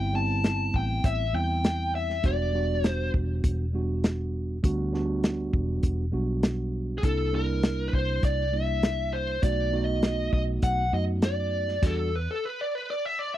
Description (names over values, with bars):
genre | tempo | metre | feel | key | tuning
straight-eighth soul blues | 100 BPM | 4/4 | straight | E minor | A4 = 440 Hz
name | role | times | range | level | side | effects
smooth overdriven lead guitar | melody | 0.0-3.1, 7.0-13.4 s | G#4 to A5 | -29 LUFS | left 1 dB | none
mellow tine electric piano | accompaniment | 0.0-12.1 s | G3 to F#4 | -32 LUFS | right 3 dB | none
vintage muted fingered electric bass | bass | 0.0-12.3 s | E1 to F#2 | -29 LUFS | equal | none
warm soul drum kit | drums | 0.4-12.0 s | crash cymbal, hi-hat, kick drum, snare drum | -24 LUFS | equal | none
room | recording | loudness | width
little or no reverb | dry, close 1970s-style studio recording | -24 LUFS | side -13 dB against mid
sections
0.0-13.4 A section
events
stop 11.8-13.4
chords
0.0 Am9; 2.2 Em9; 7.0 C7; 9.4 B7; 11.8 Em9